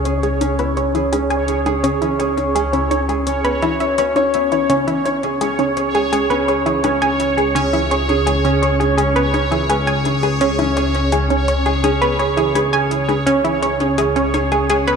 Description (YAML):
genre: ambient, sequencer-driven space music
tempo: 84 BPM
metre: 4/4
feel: straight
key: C# minor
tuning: A4 = 440 Hz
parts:
  - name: concert harp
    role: arpeggios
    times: 0.0-15.0 s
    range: B3 to C#5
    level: -20 LUFS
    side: moving between left 3 dB and right 7 dB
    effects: auto-pan, tape echo
  - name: analog drone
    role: bass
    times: 0.0-15.0 s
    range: C#2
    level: -23 LUFS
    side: equal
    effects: chorus, phaser
  - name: bubbling stepped-filter texture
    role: texture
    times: 0.0-15.0 s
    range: C#5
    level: -22 LUFS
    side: right 2 dB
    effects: chorus, built-in reverb
  - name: analog pluck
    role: riff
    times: 0.1-15.0 s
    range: C#4 to G#5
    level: -19 LUFS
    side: equal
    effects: chorus, tape echo
  - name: electronic hi-hat and congas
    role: percussion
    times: 0.1-15.0 s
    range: none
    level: -29 LUFS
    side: left 4 dB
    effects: tape echo
room: wet plate reverb, RT60 3.6 s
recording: echo-heavy mix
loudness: -15 LUFS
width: side -6 dB against mid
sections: 0.0-15.0 A section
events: filter sweep on synth arpeggio sound 0.0-15.0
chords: 0.0 C#m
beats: 0.41 1.12 | 1.84 2.55 3.27 3.98 | 4.70 5.41 6.12 6.84 | 7.55 8.27 8.98 9.70 | 10.41 11.12 11.84 12.55 | 13.27 13.98 14.70